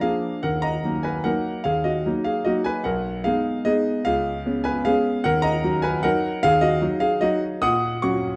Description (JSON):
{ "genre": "classical, piano waltz", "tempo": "150 BPM", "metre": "3/4", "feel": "uneven beats, rubato", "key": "unclear", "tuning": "A4 = 440 Hz", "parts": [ { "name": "clear grand piano", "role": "solo", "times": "0.0-8.4 s", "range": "B1 to D#6", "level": "-22 LUFS", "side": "equal", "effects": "none" } ], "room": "moderate scoring stage reverb, RT60 1.9 s", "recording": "dark, warm production", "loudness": "-23 LUFS", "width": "mono", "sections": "0.0-8.4 A section", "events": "none", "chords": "0.4 D#m; 2.9 G#m/B; 4.1 C#7; 5.3 D#m; 7.6 F#/A#", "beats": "0.02 | 0.43 0.84 1.26 | 1.66 2.06 2.46 | 2.85 3.25 3.66 | 4.06 4.45 4.85 | 5.26 5.64 6.04 | 6.45 6.83 7.23 | 7.64 8.04" }